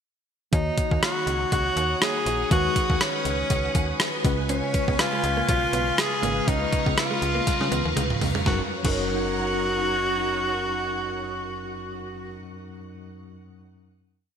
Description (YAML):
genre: 1980s-style pop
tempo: 121 BPM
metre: 4/4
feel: swing 55% on 16ths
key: F# major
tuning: A4 = 439 Hz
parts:
  - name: clear tenor saxophone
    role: melody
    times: 0.5-12.4 s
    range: C#4 to G#4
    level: -26 LUFS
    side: equal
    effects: shimmer reverb
  - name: mellow tine electric piano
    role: accompaniment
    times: 0.5-14.4 s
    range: F#2 to C#5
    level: -31 LUFS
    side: left 1 dB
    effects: medium stereo tremolo, shimmer reverb
  - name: phased string machine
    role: sustained chords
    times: 0.5-12.0 s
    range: D#4 to D#6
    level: -32 LUFS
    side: equal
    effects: ensemble chorus, phaser, shimmer reverb
  - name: slap-like FM bass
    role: bass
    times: 0.5-12.4 s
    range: F#1 to C#3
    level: -30 LUFS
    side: equal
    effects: none
  - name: gated 80s digital drum machine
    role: drums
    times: 0.5-9.0 s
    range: crash cymbal, hi-hat, kick drum, rim click, snare drum, toms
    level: -25 LUFS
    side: equal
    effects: gated reverb, gated reverb snare, overdrive
  - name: direct-recorded clean electric guitar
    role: riff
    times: 4.5-8.9 s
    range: F#3 to C#4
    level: -34 LUFS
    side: right 6 dB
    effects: none
room: moderate lush hall reverb, RT60 2.5 s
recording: bright 1980s-style digital production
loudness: -22 LUFS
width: side -7 dB against mid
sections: 0.5-8.5 verse; 8.5-12.4 final chord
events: drum fill 7.5-8.5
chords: 0.5 D#m7; 2.5 G#m7; 4.2 C#7; 8.5 F#6